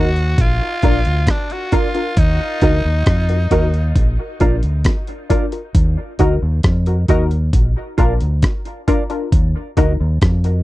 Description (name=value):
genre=dub reggae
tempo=67 BPM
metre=4/4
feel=straight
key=Eb harmonic minor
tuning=A4 = 441 Hz
part: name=breathy tenor saxophone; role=melody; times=0.0-4.0 s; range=D4 to Gb4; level=-24 LUFS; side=equal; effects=dub echo
part: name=mellow electric guitar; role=accompaniment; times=0.0-9.9 s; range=F4 to Eb5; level=-24 LUFS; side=right 6 dB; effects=dub echo
part: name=filtered dub chord stab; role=stabs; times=0.0-10.5 s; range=D4 to Bb4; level=-24 LUFS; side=left 4 dB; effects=chorus, dub echo
part: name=deep dub fingered electric bass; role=bass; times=0.0-10.6 s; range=Bb1 to F2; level=-16 LUFS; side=equal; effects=none
part: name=dusty soul sampler-style drum kit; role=drums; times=0.2-10.6 s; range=hi-hat, kick drum, rim click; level=-16 LUFS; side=equal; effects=none
room=little or no reverb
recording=dry, close 1970s-style studio recording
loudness=-14 LUFS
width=side -17 dB against mid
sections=0.0-10.6 A section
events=none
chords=0.4 Bb; 2.2 Ebm; 4.0 Bb; 5.7 Ebm; 7.5 Bb; 9.3 Ebm